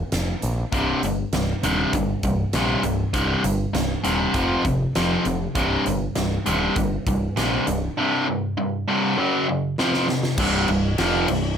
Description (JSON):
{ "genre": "hard rock", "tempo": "99 BPM", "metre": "4/4", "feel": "straight", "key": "C minor", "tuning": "A4 = 442 Hz", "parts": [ { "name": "growling picked electric bass", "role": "bass", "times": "0.0-11.6 s", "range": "C1 to Bb1", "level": "-26 LUFS", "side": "equal", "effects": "overdrive" }, { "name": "huge arena drum kit", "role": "drums", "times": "0.1-11.4 s", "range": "crash cymbal, hi-hat, kick drum, snare drum", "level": "-28 LUFS", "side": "equal", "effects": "none" }, { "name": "biting overdriven guitar", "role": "riff", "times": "0.7-11.5 s", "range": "C2 to F#3", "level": "-21 LUFS", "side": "equal", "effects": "none" } ], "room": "light reverb", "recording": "none", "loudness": "-20 LUFS", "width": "side -8 dB against mid", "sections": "0.0-10.4 A section; 10.4-11.6 B section", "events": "drum fill 9.8-10.4", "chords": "0.1 Fsus4; 0.7 C5; 4.3 F5; 5.6 C5; 9.2 F#5; 9.8 F5; 10.4 C5", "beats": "0.12 | 0.72 1.33 1.93 2.54 | 3.14 3.74 4.35 4.95 | 5.56 6.16 6.76 7.37 | 7.97 8.57 9.18 9.78 | 10.38 10.98" }